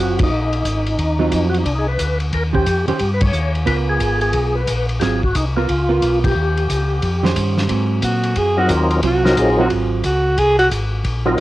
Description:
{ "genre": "soul jazz organ trio", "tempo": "179 BPM", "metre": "4/4", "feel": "swing 64% on 8ths", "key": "Ab mixolydian", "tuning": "A4 = 440 Hz", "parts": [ { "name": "percussive tonewheel organ", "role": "melody", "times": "0.0-11.4 s", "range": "Gb3 to Db5", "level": "-20 LUFS", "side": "left 1 dB", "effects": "slow rotary speaker, overdrive, chorus vibrato, cassette tape" }, { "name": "hollow-body jazz guitar", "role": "accompaniment", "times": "0.0-11.4 s", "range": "Eb3 to C5", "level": "-22 LUFS", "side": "right 6 dB", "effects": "cassette tape" }, { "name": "mellow tonewheel organ", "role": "bass", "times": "0.0-11.4 s", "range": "Gb1 to Bb2", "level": "-20 LUFS", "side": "equal", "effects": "slow rotary speaker" }, { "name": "warm soul drum kit", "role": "drums", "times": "0.2-11.4 s", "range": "hi-hat, kick drum, ride cymbal, snare drum", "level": "-23 LUFS", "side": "left 1 dB", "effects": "none" }, { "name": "breathy alto saxophone", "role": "melody", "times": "8.0-10.7 s", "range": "Gb4 to Ab4", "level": "-17 LUFS", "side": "right 1 dB", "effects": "cassette tape" } ], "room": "moderate spring reverb, RT60 1.3 s, studio reverb", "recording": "home recording on cassette", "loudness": "-15 LUFS", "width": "side -16 dB against mid", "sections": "0.0-7.7 A section; 7.7-11.4 B section", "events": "band accent 0.1, 3.2, 6.2; alto saxophone solo 7.7-11.4", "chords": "0.0 Ab13; 2.3 Eb13; 3.7 Db6; 5.0 Ab13; 5.7 Db6; 6.3 Eb13; 7.7 Ab13" }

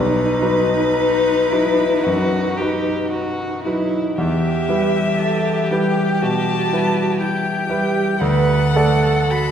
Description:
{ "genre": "classical, slow romantic movement for piano quartet", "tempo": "52-62 BPM", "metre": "4/4", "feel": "rubato", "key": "E minor", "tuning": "A4 = 440 Hz", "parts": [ { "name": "rich violin", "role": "melody", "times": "0.0-9.5 s", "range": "B4 to B5", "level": "-21 LUFS", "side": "left 4 dB", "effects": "none" }, { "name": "warm cello", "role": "second line", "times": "0.0-9.5 s", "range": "D#4 to B4", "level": "-24 LUFS", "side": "right 6 dB", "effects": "none" }, { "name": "warm violin", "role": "second line", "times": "0.0-9.5 s", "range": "D#4 to A4", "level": "-26 LUFS", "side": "left 1 dB", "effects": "none" }, { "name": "clear concert grand piano", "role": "accompaniment", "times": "0.0-9.5 s", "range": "B1 to D5", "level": "-19 LUFS", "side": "equal", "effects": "none" } ], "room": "wet concert hall reverb, RT60 1.9 s", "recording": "recorded in a church or concert hall", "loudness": "-16 LUFS", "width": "side -8 dB against mid", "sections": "0.0-9.5 A section", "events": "none", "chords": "0.0 B; 4.2 Em; 8.2 D" }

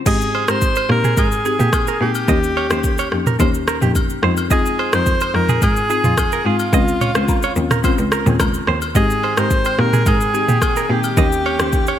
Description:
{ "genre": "afrobeats", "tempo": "108 BPM", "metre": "4/4", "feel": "straight", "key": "Ab major", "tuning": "A4 = 441 Hz", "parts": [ { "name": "hollow soft pad", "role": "sustained chords", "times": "0.0, 9.0-12.0 s", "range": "Eb3 to G5", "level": "-30 LUFS", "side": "equal", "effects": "ensemble chorus" }, { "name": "breathy alto saxophone", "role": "melody", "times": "0.1-12.0 s", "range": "F4 to C5", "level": "-20 LUFS", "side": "equal", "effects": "ping-pong delay" }, { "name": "folk marimba with medium mallets", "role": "accompaniment", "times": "0.1-11.8 s", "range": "Ab3 to G4", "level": "-23 LUFS", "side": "left 7 dB", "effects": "none" }, { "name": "direct-recorded clean electric guitar", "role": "riff", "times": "0.1-12.0 s", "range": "F4 to Eb5", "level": "-24 LUFS", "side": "right 9 dB", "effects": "ping-pong delay" }, { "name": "clear cello", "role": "bass", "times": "0.1-11.9 s", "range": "Db2 to Bb2", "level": "-21 LUFS", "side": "equal", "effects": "none" }, { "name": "afro-pop drum kit", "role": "drums", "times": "0.1-12.0 s", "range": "crash cymbal, kick drum, rim click, shaker, toms", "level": "-19 LUFS", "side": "equal", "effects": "gated reverb" }, { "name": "agogo bells and woodblock", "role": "percussion", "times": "0.3-12.0 s", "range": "none", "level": "-30 LUFS", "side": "left 5 dB", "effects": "none" } ], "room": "light reverb, small room ambience", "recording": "bright 1980s-style digital production", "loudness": "-14 LUFS", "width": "side -10 dB against mid", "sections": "0.1-12.0 A section", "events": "none", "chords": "0.1 Abmaj7; 2.3 Eb7; 4.2 Fm7; 6.7 Dbmaj7; 9.0 Abmaj7; 11.2 Eb7" }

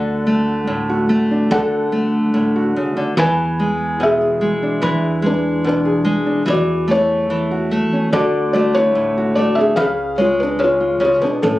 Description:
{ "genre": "acoustic folk-pop ballad", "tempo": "72 BPM", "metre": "4/4", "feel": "straight", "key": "unclear", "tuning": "A4 = 440 Hz", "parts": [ { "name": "felt-muted upright piano", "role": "melody", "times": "0.0-11.6 s", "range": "C#4 to G#5", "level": "-18 LUFS", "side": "left 1 dB", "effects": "none" }, { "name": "nylon-string guitar", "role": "accompaniment", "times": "0.0-11.6 s", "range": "A2 to B4", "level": "-18 LUFS", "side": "equal", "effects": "none" }, { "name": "upright bass", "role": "bass", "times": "0.0-11.6 s", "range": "A1 to E2", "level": "-27 LUFS", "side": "equal", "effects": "none" } ], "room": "light reverb", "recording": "recorded on a phone in the room, studio ambience, compression", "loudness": "-15 LUFS", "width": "side -16 dB against mid", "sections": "0.0-11.6 A section", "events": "none", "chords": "0.0 D; 3.2 E7; 6.5 A6/E; 8.1 D; 9.8 C#7" }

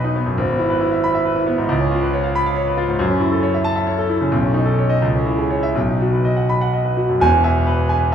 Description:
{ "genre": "classical, virtuoso piano study", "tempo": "81-94 BPM (dotted quarters)", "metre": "6/8", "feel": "rubato", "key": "E major", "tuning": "A4 = 441 Hz", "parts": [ { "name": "bright concert grand piano", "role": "solo", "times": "0.0-8.1 s", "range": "E1 to B5", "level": "-16 LUFS", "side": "equal", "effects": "none" } ], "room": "wet concert hall reverb, RT60 2.5 s", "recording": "small room ambience", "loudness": "-16 LUFS", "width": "side -8 dB against mid", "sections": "0.0-7.2 A section", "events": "none", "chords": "0.4 E/G#; 1.7 C#7; 3.0 F#m7; 4.3 B9; 5.0 C#m; 5.8 B; 7.2 E" }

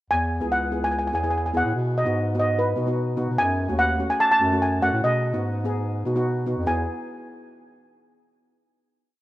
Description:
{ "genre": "calypso", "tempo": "146 BPM", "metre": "4/4", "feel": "straight", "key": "E major", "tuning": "A4 = 440 Hz", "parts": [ { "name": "steel pan", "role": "melody", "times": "0.1-6.9 s", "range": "B4 to A5", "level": "-23 LUFS", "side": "equal", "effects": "none" }, { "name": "mellow bass clarinet", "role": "bass", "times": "0.1-6.9 s", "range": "C#2 to B2", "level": "-26 LUFS", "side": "equal", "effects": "none" }, { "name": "steel pan", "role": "accompaniment", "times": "0.4-6.9 s", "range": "A3 to G#4", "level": "-28 LUFS", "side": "equal", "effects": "none" } ], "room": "light reverb, studio reverb", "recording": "rough home demo mix", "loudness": "-21 LUFS", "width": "side -16 dB against mid", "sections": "0.1-6.7 verse; 6.7-8.3 final chord", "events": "none", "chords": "0.1 E; 1.7 B; 3.4 F#m; 5.0 B; 6.7 E" }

